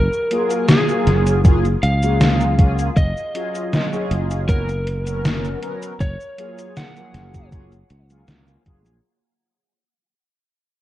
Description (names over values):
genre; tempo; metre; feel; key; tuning
vaporwave; 79 BPM; 4/4; straight; F# major; A4 = 439 Hz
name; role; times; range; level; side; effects
lightly driven lead guitar; melody; 0.0-7.5 s; G#4 to F#5; -24 LUFS; equal; vintage 12-bit sampler grit, tape echo
sustaining fretless electric bass; bass; 0.0-9.0 s; F#1 to C#2; -19 LUFS; equal; none
gated 80s digital drum machine; drums; 0.1-9.0 s; cabasa, hi-hat, snare drum; -20 LUFS; equal; gated reverb, gated reverb snare, overdrive
mellow synth brass; accompaniment; 0.3-9.0 s; E#3 to A#4; -25 LUFS; left 1 dB; wide subtle chorus
electronic kick drum; drums; 1.4-8.8 s; none; -14 LUFS; equal; overdrive
room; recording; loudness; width
little or no reverb; dark, warm production, cassette tape; -16 LUFS; side -14 dB against mid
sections
0.0-9.0 A section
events
fade-out 0.9-9.0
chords
0.0 F#maj9; 3.0 D#m11/F#; 4.5 F#add11; 6.0 F#maj9